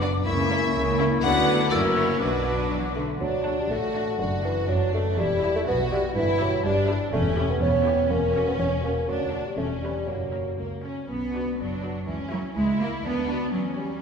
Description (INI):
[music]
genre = cinematic, playful, whimsical film cue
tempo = 122 BPM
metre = 2/4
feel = straight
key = B minor, D major from 3.2 s, B minor from 7.1 s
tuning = A4 = 440 Hz
[part]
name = rich chamber violin section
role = melody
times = 0.0-14.0 s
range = A4 to F#5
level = -31 LUFS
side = left 4 dB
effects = none
[part]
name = mellow clarinet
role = second line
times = 0.0-2.9 s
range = D4 to F#4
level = -31 LUFS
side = left 3 dB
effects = none
[part]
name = rich symphonic violin section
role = second line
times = 0.0-14.0 s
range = A#3 to B4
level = -31 LUFS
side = left 2 dB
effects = none
[part]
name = silver concert flute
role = second line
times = 0.0-3.0 s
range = C#6 to E6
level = -32 LUFS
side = left 1 dB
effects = none
[part]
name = clear symphonic viola section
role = accompaniment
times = 0.0-14.0 s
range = F#3 to B4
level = -34 LUFS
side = equal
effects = none
[part]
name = mellow bassoon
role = accompaniment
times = 0.0-10.6 s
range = D3 to C#4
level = -26 LUFS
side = right 1 dB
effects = none
[part]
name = mellow French horn section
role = sustained chords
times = 0.0-3.0 s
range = A#3 to E4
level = -32 LUFS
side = left 5 dB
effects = none
[part]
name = rich chamber double bass section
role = bass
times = 0.0-13.9 s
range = E1 to E2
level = -31 LUFS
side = right 1 dB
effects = none
[part]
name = rich symphonic cello section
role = bass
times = 0.0-14.0 s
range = C#2 to B3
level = -29 LUFS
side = right 1 dB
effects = none
[sound]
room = wet scoring stage reverb, RT60 1.9 s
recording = heard from further back in the room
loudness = -22 LUFS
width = side -6 dB against mid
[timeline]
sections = 0.0-3.2 A section; 3.2-11.1 B section; 11.1-14.0 C section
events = none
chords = 0.2 A#dim/C#; 1.2 Bm/D; 1.7 F#7; 2.2 Bm; 3.2 D; 4.2 D/F#; 5.2 Em; 6.2 Em/G; 7.1 C#dim/E; 8.1 F#5/E; 9.1 Bm/D; 9.6 C#m7b5/E; 10.1 F#; 11.1 Bm; 12.1 A#dim/C#; 13.0 Bm/D; 13.5 C#dim/E